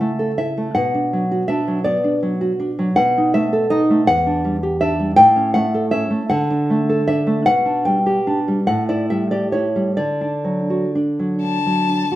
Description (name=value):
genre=romantic duo for violin and classical guitar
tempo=39-55 BPM (dotted quarters)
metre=6/8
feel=rubato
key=D major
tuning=A4 = 440 Hz
part: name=nylon-string guitar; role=accompaniment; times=0.0-12.2 s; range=E2 to G5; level=-16 LUFS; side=equal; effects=none
part: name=clear violin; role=melody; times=11.4-12.2 s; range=A5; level=-20 LUFS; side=left 7 dB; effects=none
room=wet studio reverb, RT60 0.6 s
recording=heard from further back in the room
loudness=-16 LUFS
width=side -14 dB against mid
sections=0.0-12.2 A section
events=none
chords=0.0 A/C#; 0.8 Bm; 3.0 B7; 4.1 Em7; 5.2 A; 6.3 D; 7.5 G/B; 8.7 A5; 10.0 D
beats=| 0.75 1.85 | 2.96 4.06 | 5.17 6.29 | 7.46 8.66 | 9.97 11.43